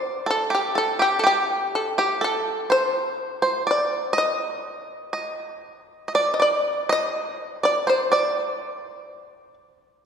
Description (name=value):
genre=japanese traditional, Japanese chamber music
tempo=62 BPM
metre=2/4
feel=rubato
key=D in sen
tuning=A4 = 440 Hz
part: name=shamisen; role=melody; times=0.0-9.5 s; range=G4 to Eb5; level=-23 LUFS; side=left 1 dB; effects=none
part: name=bluegrass banjo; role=second line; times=0.0-9.5 s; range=G4 to Eb5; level=-24 LUFS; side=right 2 dB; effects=none
room=wet concert hall reverb, RT60 2.6 s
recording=minimal, uncompressed stereo recording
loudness=-20 LUFS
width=side -7 dB against mid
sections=0.0-10.1 A section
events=none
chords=none